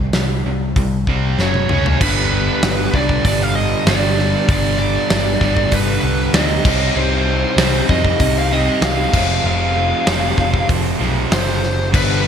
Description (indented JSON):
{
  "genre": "hard rock",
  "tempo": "97 BPM",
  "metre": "4/4",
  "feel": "straight",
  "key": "unclear",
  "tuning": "A4 = 440 Hz",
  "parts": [
    { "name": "cranked stack guitar", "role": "riff", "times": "0.0-12.3 s", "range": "F2 to Db4", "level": "-23 LUFS", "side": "right 12 dB", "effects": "overdrive" },
    { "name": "overdriven semi-hollow guitar", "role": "riff", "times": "0.0-12.3 s", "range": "F2 to Db4", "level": "-24 LUFS", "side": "left 12 dB", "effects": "analog chorus" },
    { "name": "picked electric bass", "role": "bass", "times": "0.0-12.3 s", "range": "F1 to F2", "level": "-20 LUFS", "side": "equal", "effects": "none" },
    { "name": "big rock drum kit", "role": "drums", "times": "0.1-12.1 s", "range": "crash cymbal, hi-hat, kick drum, snare drum, toms", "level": "-19 LUFS", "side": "equal", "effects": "gated reverb" },
    { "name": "biting lead guitar", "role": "melody", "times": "1.4-12.3 s", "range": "B4 to F5", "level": "-21 LUFS", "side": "right 1 dB", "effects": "overdrive" },
    { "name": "raw garage guitar", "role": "riff", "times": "2.0-12.3 s", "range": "F2 to Eb4", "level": "-24 LUFS", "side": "left 1 dB", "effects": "overdrive" }
  ],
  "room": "light reverb, studio ambience",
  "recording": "bright 1980s-style digital production",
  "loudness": "-14 LUFS",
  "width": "side -8 dB against mid",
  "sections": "0.0-2.0 A section; 2.0-12.3 B section",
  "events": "drum fill 1.4-2.0",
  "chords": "0.0 C5; 1.4 F#5; 1.7 Db5; 2.0 G; 6.7 Cm; 9.1 Fm",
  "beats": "0.14 0.76 1.39 | 2.01 2.63 3.25 3.87 | 4.49 5.11 5.73 6.35 | 6.97 7.59 8.21 8.83 | 9.45 10.07 10.69 11.31 | 11.93"
}